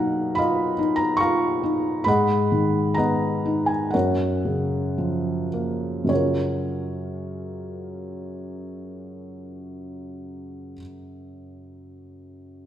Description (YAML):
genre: classical, lyrical solo piano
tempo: 52-75 BPM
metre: 4/4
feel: rubato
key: F# major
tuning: A4 = 441 Hz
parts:
  - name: felt-muted upright piano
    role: solo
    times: 0.0-12.7 s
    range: F#2 to C#6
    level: -23 LUFS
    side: equal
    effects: none
room: wet recital hall reverb, RT60 1.8 s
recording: recorded in a church or concert hall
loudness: -21 LUFS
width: side -10 dB against mid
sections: 0.0-6.1 A section; 6.1-10.6 B section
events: slowing down 0.0-6.1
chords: 0.0 Bmaj9#11; 2.1 G#m7; 3.9 F#maj7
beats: 0.37 1.20 | 2.06 2.97 3.94 4.99 | 6.10 7.24 8.36 9.47